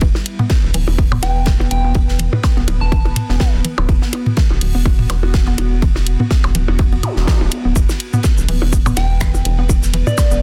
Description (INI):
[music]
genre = minimal techno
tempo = 124 BPM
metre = 4/4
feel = swing 56% on 16ths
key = E minor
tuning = A4 = 440 Hz
[part]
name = hollow square pluck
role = riff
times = 0.0-10.4 s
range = E3 to B3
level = -29 LUFS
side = equal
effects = chorus, sidechain pumping, digital delay
[part]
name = rubbery square bass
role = bass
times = 0.0-10.4 s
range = D1 to E1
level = -19 LUFS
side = equal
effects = sidechain pumping
[part]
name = electronic kick drum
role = drums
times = 0.0-10.3 s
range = none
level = -17 LUFS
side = equal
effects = none
[part]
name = gated 80s drum kit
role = drums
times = 0.0-10.4 s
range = hi-hat, ride cymbal, snare drum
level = -33 LUFS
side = equal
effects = sidechain pumping on cymbals, high-pass filter on cymbals, sidechain pumping on hats, high-pass filter on hats, high-pass filter on snare, high-pass filter on room
[part]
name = pulsing gated texture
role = texture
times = 0.0-10.4 s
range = B3 to B4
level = -30 LUFS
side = equal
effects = chorus, built-in reverb, sidechain pumping
[part]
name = electronic percussion blips and toms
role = percussion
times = 0.2-10.3 s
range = none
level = -22 LUFS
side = equal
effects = overdrive
[part]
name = house drum kit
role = drums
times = 0.3-10.4 s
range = finger snaps, hi-hat, shaker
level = -26 LUFS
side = equal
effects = soft clipping on snare
[part]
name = soft synth bell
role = melody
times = 1.2-3.5, 9.0-10.4 s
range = D5 to A5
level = -28 LUFS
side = equal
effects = chorus, phaser, delay
[part]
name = zap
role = sound effects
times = 7.0-7.2 s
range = none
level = -30 LUFS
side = equal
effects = none
[sound]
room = light reverb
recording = dense, heavily limited modern master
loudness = -16 LUFS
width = mono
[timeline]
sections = 0.0-10.4 A section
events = none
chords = 0.0 E5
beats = | 0.02 0.50 0.98 1.47 | 1.95 2.44 2.92 3.40 | 3.89 4.37 4.86 5.34 | 5.82 6.31 6.79 7.28 | 7.76 8.24 8.73 9.21 | 9.69 10.18